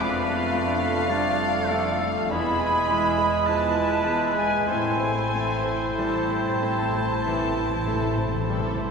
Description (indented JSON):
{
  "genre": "classical",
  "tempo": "46-56 BPM",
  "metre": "4/4",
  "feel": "rubato",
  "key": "A minor",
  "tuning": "A4 = 440 Hz",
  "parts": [
    { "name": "clear grand piano", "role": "melody", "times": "0.0-8.9 s", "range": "E2 to A3", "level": "-30 LUFS", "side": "left 2 dB", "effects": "none" },
    { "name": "warm chamber violin section", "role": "melody", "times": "0.0-8.9 s", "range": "F5 to B5", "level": "-31 LUFS", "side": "left 1 dB", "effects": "none" },
    { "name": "clear oboe", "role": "second line", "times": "0.0-8.9 s", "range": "G#4 to D5", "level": "-30 LUFS", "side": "right 1 dB", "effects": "none" },
    { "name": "silver concert flute", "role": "second line", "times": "0.0-8.9 s", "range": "F5 to B5", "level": "-31 LUFS", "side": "equal", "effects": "none" },
    { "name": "warm chamber violin section", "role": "second line", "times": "0.0-8.9 s", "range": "E4 to G#5", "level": "-34 LUFS", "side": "left 2 dB", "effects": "none" },
    { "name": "warm clarinet", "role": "second line", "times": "0.0-8.9 s", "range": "D4 to E4", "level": "-33 LUFS", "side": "right 1 dB", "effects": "none" },
    { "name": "clear bassoon", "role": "accompaniment", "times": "0.0-8.9 s", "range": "G#3 to C4", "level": "-30 LUFS", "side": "right 5 dB", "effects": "none" },
    { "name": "warm chamber viola section", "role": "accompaniment", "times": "0.0-8.9 s", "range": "E3 to F4", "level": "-34 LUFS", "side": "right 1 dB", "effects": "none" },
    { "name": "mellow French horn section", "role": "sustained chords", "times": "0.0-8.9 s", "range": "G#3 to E4", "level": "-33 LUFS", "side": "left 1 dB", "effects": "none" },
    { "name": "warm chamber cello section", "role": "bass", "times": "0.0-8.9 s", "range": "E2 to A2", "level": "-35 LUFS", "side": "equal", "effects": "none" },
    { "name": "warm chamber double bass section", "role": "bass", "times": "0.0-8.9 s", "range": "E1 to A1", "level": "-34 LUFS", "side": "left 1 dB", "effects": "none" },
    { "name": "timpani", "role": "percussion", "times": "4.7-8.9 s", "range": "A2", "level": "-36 LUFS", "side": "left 1 dB", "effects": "none" }
  ],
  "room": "wet concert hall reverb, RT60 2.0 s",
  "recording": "recorded in a church or concert hall",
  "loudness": "-21 LUFS",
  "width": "side -5 dB against mid",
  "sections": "0.0-8.9 A section",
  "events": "timpani fill 4.7-8.9",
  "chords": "0.0 Dm/F; 2.3 E; 4.7 Am"
}